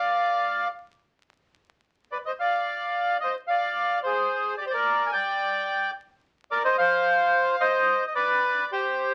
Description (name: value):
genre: tango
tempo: 109 BPM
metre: 4/4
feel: rubato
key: unclear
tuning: A4 = 440 Hz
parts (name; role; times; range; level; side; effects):
- bandoneon; solo; 0.0-9.1 s; G4 to Ab5; -25 LUFS; equal; none
room: moderate small room reverb, RT60 0.5 s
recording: very old 78 rpm record, vinyl crackle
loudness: -25 LUFS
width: mono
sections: 0.0-9.1 A section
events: none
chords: 0.2 Bdim (rootless); 2.4 Csus2; 3.5 Dm7b5; 4.6 G5; 5.7 Bbadd9; 6.8 N.C.; 7.9 Bm; 8.4 G